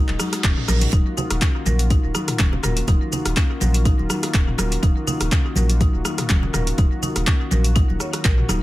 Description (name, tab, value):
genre	afro house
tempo	123 BPM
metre	4/4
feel	swing 54% on 16ths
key	Eb minor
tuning	A4 = 440 Hz
part	warm analog pad	sustained chords	0.0-8.6 s	Eb3 to Gb4	-31 LUFS	left 1 dB	chorus, sidechain pumping
part	marimba with hard mallets	arpeggios	0.0-8.6 s	Db4 to Db5	-28 LUFS	left 2 dB	sidechain pumping, dub echo
part	warm sub bass	bass	0.0-8.6 s	Eb1 to Bb1	-21 LUFS	equal	sidechain pumping
part	reverse cymbal	sound effects	0.2-0.9 s	none	-31 LUFS	right 6 dB	none
part	deep house drum kit	drums	0.1-8.6 s	handclaps, hi-hat, rim click, shaker, toms	-25 LUFS	equal	analog delay
part	congas	percussion	0.1-8.6 s	none	-28 LUFS	right 1 dB	analog delay
part	electronic kick drum	drums	0.4-8.4 s	none	-18 LUFS	equal	none
room	digital ambience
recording	echo-heavy mix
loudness	-17 LUFS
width	side -17 dB against mid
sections	0.0-8.6 A section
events	reverse cymbal 0.2-0.9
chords	0.0 Gbsus2/Eb; 0.9 Ebm